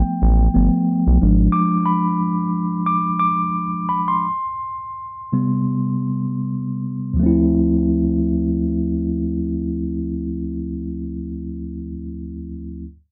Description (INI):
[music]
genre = R&B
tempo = 76-90 BPM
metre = 4/4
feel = swing 54% on 16ths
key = D dorian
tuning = A4 = 444 Hz
[part]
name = mellow tine electric piano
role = accompaniment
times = 0.0-12.9 s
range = D2 to D6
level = -21 LUFS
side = equal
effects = none
[part]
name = round analog bass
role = bass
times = 0.0-1.5 s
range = G1 to B1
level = -18 LUFS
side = equal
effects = none
[sound]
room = light reverb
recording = dry, close 1970s-style studio recording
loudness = -20 LUFS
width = mono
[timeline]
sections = 0.0-7.2 A section; 7.2-10.3 B section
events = tine electric piano solo 0.0-7.2; slowing down 1.5-7.2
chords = 0.0 G9; 1.2 G#dim7; 4.3 C5; 7.2 Dm7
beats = 0.20 0.86 | 1.53 2.20 2.87 3.56 | 4.25 4.96 5.69 6.43 | 7.21 7.99 8.77 9.56